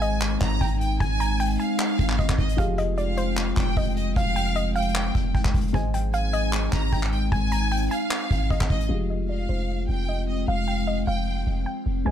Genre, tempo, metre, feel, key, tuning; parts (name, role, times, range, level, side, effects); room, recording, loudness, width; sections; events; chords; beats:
hip hop, trap; 152 BPM; 4/4; half-time; F minor; A4 = 440 Hz
soft round pluck; melody; 0.0-12.1 s; C5 to Bb5; -32 LUFS; equal; chorus, low-pass filter
rich studio violin section; second line; 0.0-11.6 s; Eb5 to Bb5; -32 LUFS; right 1 dB; ping-pong delay
felt-muted upright piano; accompaniment; 0.0-12.1 s; F3 to Eb5; -35 LUFS; left 3 dB; low-pass filter
glassy FM pad; sustained chords; 0.0-12.1 s; F3 to G5; -29 LUFS; left 2 dB; ensemble chorus, built-in reverb, low-pass filter
long sustained 808-style bass; bass; 0.0-12.1 s; F1 to Ab1; -26 LUFS; equal
vintage brush drum kit; drums; 0.0-8.9 s; handclaps, hi-hat, kick drum, rim click; -27 LUFS; equal
small room ambience; -22 LUFS; side -10 dB against mid
0.0-8.9 A section; 8.9-12.1 B section
filter sweep 8.9-12.1
0.0 Ab; 2.6 Fmadd9; 5.7 Ab; 8.9 Fmadd9
0.21 0.61 | 1.00 1.40 1.79 2.19 | 2.58 2.98 3.37 3.77 | 4.16 4.56 4.95 5.35 | 5.74 6.14 6.53 6.93 | 7.32 7.71 8.11 8.51 | 8.90 9.29 9.69 10.08 | 10.48 10.87 11.27 11.66 | 12.06